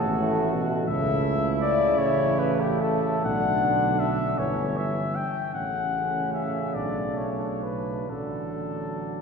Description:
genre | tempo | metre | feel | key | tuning
classical, hymn-like piece for brass band | 42-56 BPM (dotted quarters) | 6/8 | rubato | unclear | A4 = 440 Hz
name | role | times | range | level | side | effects
warm flugelhorn | melody | 0.0-9.2 s | G4 to G5 | -27 LUFS | left 6 dB | none
mellow flugelhorn | second line | 0.0-9.2 s | C#4 to F#4 | -32 LUFS | right 4 dB | none
clear euphonium | accompaniment | 0.0-9.2 s | A2 to E3 | -31 LUFS | right 4 dB | none
warm euphonium | accompaniment | 0.0-9.2 s | F#3 to A3 | -32 LUFS | left 2 dB | none
dark tuba | bass | 0.0-9.2 s | G1 to C#2 | -30 LUFS | right 2 dB | none
room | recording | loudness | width
wet church reverb, RT60 3.0 s | minimal, uncompressed stereo recording | -23 LUFS | side -5 dB against mid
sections
0.0-9.2 A section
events
none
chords
0.0 F#m/A; 0.9 A/C#; 3.2 Bm7; 4.4 Em/G; 5.5 A; 6.7 Bm; 8.1 D/A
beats
| 0.89 1.99 | 3.24 4.38 | 5.54 6.74 | 8.07

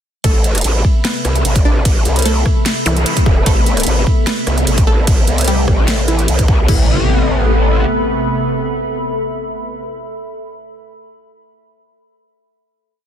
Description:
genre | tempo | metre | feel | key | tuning
heavy wobble dubstep | 149 BPM | 4/4 | swing 53% on 16ths, half-time | A minor | A4 = 439 Hz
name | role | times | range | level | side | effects
wide unison pluck | melody | 0.2-9.8 s | E3 to D5 | -23 LUFS | right 1 dB | digital delay
lush unison pad | sustained chords | 0.5-9.8 s | C3 to B3 | -22 LUFS | equal | chorus, phaser, sidechain pumping
growl bass | bass | 0.2-7.9 s | E1 to C2 | -15 LUFS | equal | chorus, overdrive
dubstep drum kit | drums | 0.2-6.8 s | crash cymbal, hi-hat, rim click, snare drum | -21 LUFS | right 2 dB | none
electronic kick drum | drums | 0.2-6.8 s | none | -13 LUFS | equal | none
warbly tape-like pad | texture | 0.7-10.0 s | A4 to B5 | -23 LUFS | left 1 dB | chorus, built-in reverb, sidechain pumping
zap and impact | sound effects | 2.9-3.0, 6.7-9.9 s | none | -22 LUFS | equal | none
room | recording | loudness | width
little or no reverb | dense, heavily limited modern master | -12 LUFS | side -9 dB against mid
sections
0.2-6.7 drop; 6.7-9.9 final chord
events
drop 0.2-6.7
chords
0.2 Amadd9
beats
| 0.24 0.65 1.05 1.45 | 1.85 2.25 2.66 3.06 | 3.46 3.87 4.27 4.67 | 5.07 5.48 5.88 6.28 | 6.68 7.09 7.49 7.89 | 8.30 8.70 9.10 9.50

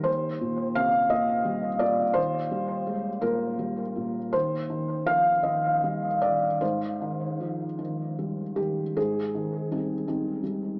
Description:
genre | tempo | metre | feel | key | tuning
neoclassical minimalist piano | 50-58 BPM (dotted quarters) | 6/8 | rubato | unclear | A4 = 441 Hz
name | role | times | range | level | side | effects
felt-muted upright piano | solo | 0.0-10.8 s | Eb2 to F5 | -24 LUFS | equal | tape echo
room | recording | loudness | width
moderate studio reverb, RT60 0.6 s | cassette tape, small speaker sound | -24 LUFS | side -28 dB against mid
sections
0.0-9.0 A section; 9.0-10.8 B section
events
none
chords
0.1 Eb6; 4.3 Cm/Eb; 6.6 Abmaj7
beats
| 0.07 1.12 | 2.17 3.24 | 4.34 5.45 | 6.62 7.79 | 8.96 10.07

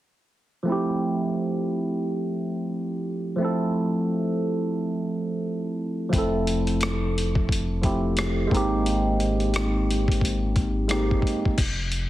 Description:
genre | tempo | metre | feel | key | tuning
R&B, neo-soul | 88 BPM | 4/4 | swing 60% on 16ths | F major | A4 = 440 Hz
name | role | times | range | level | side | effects
barky tine electric piano | accompaniment | 0.6-11.6 s | F3 to A4 | -24 LUFS | right 1 dB | phaser
rubbery square bass | bass | 6.1-12.1 s | F1 to Ab1 | -27 LUFS | equal | none
boom bap sampler-style drum kit | drums | 6.1-12.1 s | crash cymbal, hi-hat, kick drum, rim click | -26 LUFS | left 1 dB | none
room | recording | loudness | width
little or no reverb | heavily compressed radio sound | -22 LUFS | side -14 dB against mid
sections
0.7-11.6 A section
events
none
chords
0.7 Fmaj9; 8.5 Abmaj9; 11.6 N.C.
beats
| 0.67 1.35 2.04 2.72 | 3.40 4.08 4.76 5.45 | 6.13 6.81 7.49 8.17 | 8.86 9.54 10.22 10.90 | 11.58

